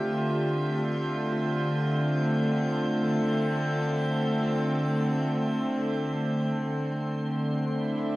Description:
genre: ambient.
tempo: free time.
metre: none.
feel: none.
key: D minor.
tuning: A4 = 444 Hz.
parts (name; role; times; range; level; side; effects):
rich chamber string section; sustained chords; 0.0-8.2 s; D3 to E5; -25 LUFS; equal; none.
drifting glass-harmonics texture; texture; 0.0-8.2 s; C6 to G6; -39 LUFS; right 1 dB; chorus, built-in reverb.
organ-like drone; drone; 7.3-8.2 s; D3 to D4; -34 LUFS; equal; ensemble chorus, built-in reverb.
room: wet booth ambience, RT60 0.2 s.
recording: home recording on cassette.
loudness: -25 LUFS.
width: side -18 dB against mid.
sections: 0.0-8.2 A section.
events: none.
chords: 0.0 Dm11; 6.4 Am/D.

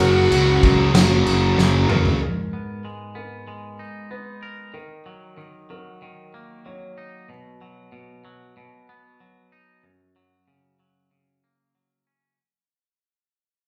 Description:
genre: post-rock.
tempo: 94 BPM.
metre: 4/4.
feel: straight.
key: F# major.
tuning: A4 = 440 Hz.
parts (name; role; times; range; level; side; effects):
dark violin; melody; 0.0-1.5 s; F#4; -24 LUFS; equal; none.
hand-pumped harmonium; sustained chords; 0.0-2.2 s; F#3 to A#5; -33 LUFS; equal; none.
felt-muted upright piano; arpeggios; 0.0-7.3 s; A#4 to C#5; -38 LUFS; equal; none.
distorted electric guitar; riff; 0.0-2.2 s; F#2 to F#3; -28 LUFS; equal; overdrive.
thick fuzz guitar; riff; 0.0-2.2 s; F#2 to F#3; -26 LUFS; equal; distortion.
fuzz picked electric bass; bass; 0.0-2.2 s; F#1 to C#2; -22 LUFS; equal; overdrive.
loose indie drum kit; drums; 0.0-2.2 s; crash cymbal, kick drum, snare drum, toms; -23 LUFS; equal; none.
twangy electric guitar; arpeggios; 2.2-12.4 s; F#2 to A#4; -41 LUFS; equal; none.
room: wet large studio reverb, RT60 0.9 s.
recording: band playing live in one room.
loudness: -18 LUFS.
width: mono.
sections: 0.0-2.2 A section; 2.2-12.4 B section.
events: drum fill 1.6-2.2; fade-out 2.2-12.4.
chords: 0.0 F#; 2.2 G#madd9; 4.7 D#m; 7.3 B; 9.8 F#.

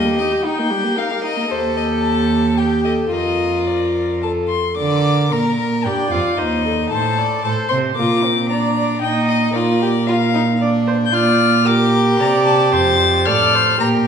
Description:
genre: quick classical-period movement for string quartet.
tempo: 113 BPM.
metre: 3/4.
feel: straight.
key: Bb major.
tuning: A4 = 440 Hz.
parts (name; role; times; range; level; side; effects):
rich violin; melody; 0.0-13.9 s; C5 to A6; -20 LUFS; left 7 dB; none.
rich violin; second line; 0.0-14.1 s; C4 to D5; -20 LUFS; left 1 dB; none.
warm viola; accompaniment; 0.0-14.1 s; G3 to Eb5; -22 LUFS; right 2 dB; none.
rich cello; bass; 0.0-14.1 s; Eb2 to D3; -19 LUFS; right 3 dB; none.
room: wet recital hall reverb, RT60 1.5 s.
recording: heard from further back in the room, nothing above 10.8 kHz.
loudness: -14 LUFS.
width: side -7 dB against mid.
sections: 0.0-4.8 A section; 4.8-14.1 B section.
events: none.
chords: 0.0 Eb; 1.5 A7(b5, no3)/Eb; 3.1 Bb/F; 4.2 F; 4.8 Bb/D; 5.9 Dmadd11; 6.4 Cm69/Eb; 8.0 Bb; 9.0 Eb/Bb; 9.6 Bb; 11.1 Gm7/Bb; 12.2 C5; 12.7 F.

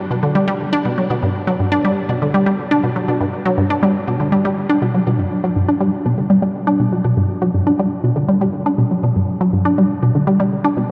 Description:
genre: ambient.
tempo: 121 BPM.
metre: 4/4.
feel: straight.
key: unclear.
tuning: A4 = 441 Hz.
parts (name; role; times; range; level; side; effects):
resonant blip pluck; solo; 0.1-10.8 s; G2 to D4; -17 LUFS; equal; chorus, tape echo.
room: wet huge ambient reverb, RT60 7.5 s.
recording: in a vast, echoing space.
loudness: -17 LUFS.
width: mono.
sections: 0.0-5.2 A section; 5.2-10.9 B section.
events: none.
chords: none.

